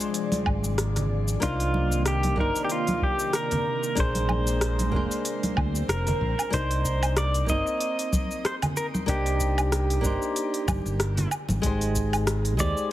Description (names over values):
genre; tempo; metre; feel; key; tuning
sunset chillout; 94 BPM; 4/4; swing 56% on 16ths; C minor; A4 = 441 Hz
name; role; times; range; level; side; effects
pedal steel guitar; melody; 0.0-12.9 s; F4 to Eb5; -29 LUFS; equal; digital delay, shimmer reverb
nylon-string guitar; accompaniment; 0.0-12.9 s; Ab3 to C5; -31 LUFS; left 1 dB; auto-pan, digital delay, shimmer reverb
airy breathy pad; sustained chords; 0.0-6.5 s; C3 to D5; -34 LUFS; right 2 dB; chorus, phaser
smooth R&B drum kit; drums; 0.0-12.9 s; hi-hat, rim click, shaker, woodblock; -31 LUFS; equal; small room reverb
congas; percussion; 0.3-11.6 s; none; -32 LUFS; equal; none
fingered electric bass; bass; 0.5-12.7 s; F1 to Eb2; -26 LUFS; equal; tube saturation
electronic kick drum; drums; 0.5-12.7 s; none; -30 LUFS; equal; small room reverb
swell; sound effects; 5.5-6.5 s; none; -38 LUFS; equal; none
room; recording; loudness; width
light reverb, digital ambience; heavily compressed radio sound; -23 LUFS; side -14 dB against mid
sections
0.0-6.5 A section; 6.5-12.9 B section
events
filter sweep on nylon-string guitar 0.0-6.5; swell 5.5-6.5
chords
0.0 Dm7b5; 1.4 Cm9; 4.0 Bb9; 6.5 Cm9; 11.3 Abmaj7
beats
0.14 0.78 | 1.42 2.06 2.70 3.34 | 3.97 4.61 5.25 5.89 | 6.53 7.17 7.80 8.44 | 9.08 9.72 10.36 10.99 | 11.63 12.27 12.91